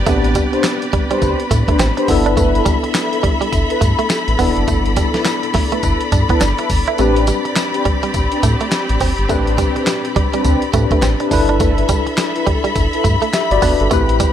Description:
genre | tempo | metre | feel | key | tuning
R&B, new jack swing | 104 BPM | 4/4 | swing 61% on 16ths | unclear | A4 = 440 Hz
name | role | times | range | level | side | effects
tine electric piano | accompaniment | 0.0-14.3 s | B3 to E5 | -20 LUFS | left 2 dB | fast stereo tremolo
warm symphonic string section | sustained chords | 0.0-14.3 s | C4 to B5 | -22 LUFS | left 3 dB | none
round analog bass | bass | 0.0-14.2 s | E1 to A2 | -18 LUFS | equal | none
direct-recorded clean electric guitar | riff | 0.1-14.3 s | G3 to E4 | -22 LUFS | right 7 dB | wide subtle chorus
dusty soul sampler-style drum kit | drums | 0.1-14.3 s | handclaps, hi-hat, kick drum, snare drum, tambourine | -19 LUFS | equal | none
mellow synth brass | stabs | 0.5-13.0 s | C4 to C5 | -22 LUFS | left 1 dB | chorus, tape echo
room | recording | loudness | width
digital ambience | none | -13 LUFS | side -10 dB against mid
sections
0.0-14.3 A section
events
kick muted 7.0-7.6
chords
0.0 Am11; 2.1 G69; 7.0 Am11; 11.3 G69

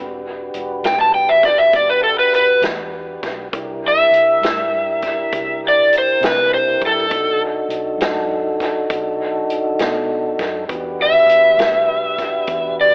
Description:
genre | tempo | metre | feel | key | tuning
slow blues | 67 BPM (dotted quarters) | 12/8 | straight | E minor | A4 = 441 Hz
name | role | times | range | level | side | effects
tonewheel organ | sustained chords | 0.0-12.9 s | D4 to B4 | -25 LUFS | equal | slow rotary speaker, overdrive
vintage muted fingered electric bass | bass | 0.0-12.9 s | E1 to C3 | -40 LUFS | equal | none
vintage drum kit | drums | 0.5-12.6 s | hi-hat, kick drum, snare drum | -27 LUFS | equal | dub echo
overdriven slide guitar | melody | 0.9-12.9 s | A4 to A5 | -16 LUFS | equal | none
room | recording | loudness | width
light reverb | echo-heavy mix, telephone sound | -17 LUFS | mono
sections
0.0-12.9 A section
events
electric slide guitar solo 0.0-12.9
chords
0.0 Em7; 3.5 C7; 7.1 B7#9; 10.7 Em7

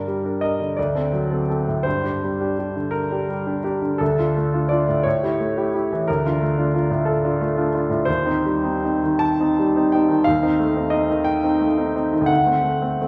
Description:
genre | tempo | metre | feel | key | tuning
classical, romantic character piece for solo piano | 51-61 BPM (dotted quarters) | 6/8 | rubato | unclear | A4 = 437 Hz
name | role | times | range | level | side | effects
clear concert grand piano | solo | 0.0-13.1 s | D2 to A5 | -21 LUFS | equal | none
room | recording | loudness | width
wet recital hall reverb, RT60 1.3 s | heard from further back in the room | -21 LUFS | mono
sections
0.0-13.1 A section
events
none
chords
0.0 Gm; 0.8 D7; 1.9 Gm; 4.0 Dm; 5.1 A7; 6.1 Dm; 8.1 Cm/Eb; 10.3 Am7b5/Eb; 12.3 D7

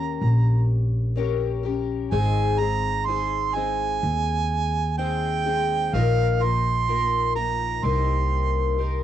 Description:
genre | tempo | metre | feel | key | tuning
acoustic folk duo or small band | 63 BPM | 4/4 | straight | unclear | A4 = 440 Hz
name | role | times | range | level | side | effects
warm harmonica | melody | 0.0-9.0 s | F5 to C6 | -25 LUFS | right 7 dB | cassette tape
picked twelve-string acoustic guitar | accompaniment | 0.0-9.0 s | Ab2 to Bb4 | -28 LUFS | left 10 dB | cassette tape
upright bass | bass | 0.0-9.0 s | Ab1 to Eb2 | -24 LUFS | equal | none
room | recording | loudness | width
light reverb | home recording on cassette | -21 LUFS | side -11 dB against mid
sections
0.0-9.0 A section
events
none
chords
0.0 Eb7 (rootless); 2.1 Ab; 5.9 Ebsus2/Bb; 7.8 Cm7

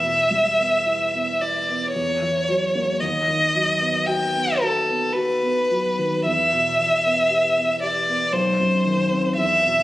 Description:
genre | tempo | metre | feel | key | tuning
classical, romantic duo for violin and grand piano | 52-59 BPM | 3/4 | rubato | E minor | A4 = 443 Hz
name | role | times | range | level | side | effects
clear violin | melody | 0.0-9.8 s | A4 to G5 | -19 LUFS | equal | none
warm baby grand piano | accompaniment | 0.0-9.8 s | B1 to G4 | -25 LUFS | equal | none
room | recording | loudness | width
moderate concert hall reverb, RT60 1.9 s | recorded on a phone in the room, club reverb, compression | -18 LUFS | side -16 dB against mid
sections
0.0-9.8 A section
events
none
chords
0.0 Em; 1.9 F#7/E; 3.0 B/D#; 6.3 Em; 8.3 B

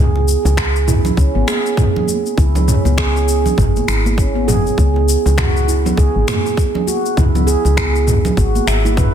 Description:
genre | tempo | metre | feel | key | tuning
organic downtempo | 100 BPM | 4/4 | swing 59% on 16ths | C# minor pentatonic | A4 = 440 Hz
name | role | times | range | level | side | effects
handpan | arpeggios | 0.0-9.1 s | B3 to E5 | -18 LUFS | right 3 dB | digital delay
woody FM bass | bass | 0.0-9.1 s | G#1 to C#2 | -16 LUFS | equal | none
bongos and congas | percussion | 0.2-9.0 s | none | -24 LUFS | right 3 dB | none
organic electronic drum kit | drums | 0.3-9.1 s | finger snaps, shaker, toms | -20 LUFS | left 1 dB | overdrive, soft clipping on snare
electronic kick drum | drums | 0.6-9.1 s | none | -17 LUFS | equal | overdrive
room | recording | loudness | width
light reverb | dense, heavily limited modern master | -13 LUFS | side -9 dB against mid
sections
0.0-9.1 A section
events
none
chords
0.0 C#5; 4.8 E

